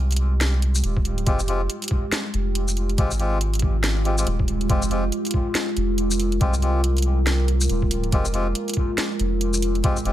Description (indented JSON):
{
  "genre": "deep dubstep",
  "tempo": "140 BPM",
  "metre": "4/4",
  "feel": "swing 59% on 16ths, half-time",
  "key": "F minor",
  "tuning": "A4 = 439 Hz",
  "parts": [
    { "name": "deep dark ambient pad", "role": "sustained chords", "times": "0.0-10.1 s", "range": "Ab3 to Bb4", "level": "-27 LUFS", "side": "right 1 dB", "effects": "chorus, built-in reverb" },
    { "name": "soft dub sub bass", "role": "bass", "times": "0.0-10.1 s", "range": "Eb1 to C2", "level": "-22 LUFS", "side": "equal", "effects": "none" },
    { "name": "garage drum kit", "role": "drums", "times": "0.1-10.1 s", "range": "hi-hat, shaker, snare drum", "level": "-27 LUFS", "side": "equal", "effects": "overdrive" },
    { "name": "electronic kick drum", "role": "drums", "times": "1.0-9.9 s", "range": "none", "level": "-22 LUFS", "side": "equal", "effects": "none" },
    { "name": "melodica", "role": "stabs", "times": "1.3-10.1 s", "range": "Ab3 to G4", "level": "-30 LUFS", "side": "left 3 dB", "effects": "dub echo" }
  ],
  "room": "light reverb, digital ambience",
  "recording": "none",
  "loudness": "-20 LUFS",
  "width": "side -13 dB against mid",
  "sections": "0.0-10.1 A section",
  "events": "none",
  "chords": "0.0 Fmadd9"
}